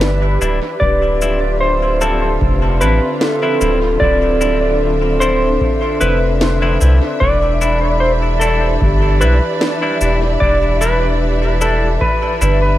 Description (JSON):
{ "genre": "ambient dub", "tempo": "75 BPM", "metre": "4/4", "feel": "swing 53% on 16ths", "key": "D dorian", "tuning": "A4 = 440 Hz", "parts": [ { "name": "clean lap steel guitar", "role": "melody", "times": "0.0-12.8 s", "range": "A4 to D5", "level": "-18 LUFS", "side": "equal", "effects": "dub echo" }, { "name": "rich studio string section", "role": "sustained chords", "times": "0.0-12.8 s", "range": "D3 to E5", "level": "-21 LUFS", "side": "equal", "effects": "none" }, { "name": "vibraphone with soft mallets", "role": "arpeggios", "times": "0.0-12.8 s", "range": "C4 to B5", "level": "-22 LUFS", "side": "right 1 dB", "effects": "auto-pan, tape echo" }, { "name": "soft dub sub bass", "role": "bass", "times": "0.0-12.8 s", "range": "D1 to C2", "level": "-16 LUFS", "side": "equal", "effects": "none" }, { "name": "electronic snare drum and shaker", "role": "drums", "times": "0.0-12.6 s", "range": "none", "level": "-23 LUFS", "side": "equal", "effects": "overdrive, dub echo" }, { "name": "clean electric guitar", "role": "stabs", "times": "0.4-12.6 s", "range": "F3 to E4", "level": "-24 LUFS", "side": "left 3 dB", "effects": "dub echo" }, { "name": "electronic kick drum", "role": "drums", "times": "0.8-12.2 s", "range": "none", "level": "-20 LUFS", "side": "equal", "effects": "none" } ], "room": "moderate spring reverb, RT60 2.1 s", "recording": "none", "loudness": "-12 LUFS", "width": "side -14 dB against mid", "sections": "0.0-12.8 A section", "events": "none", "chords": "0.0 Em7; 0.8 Dm9; 7.2 Em7" }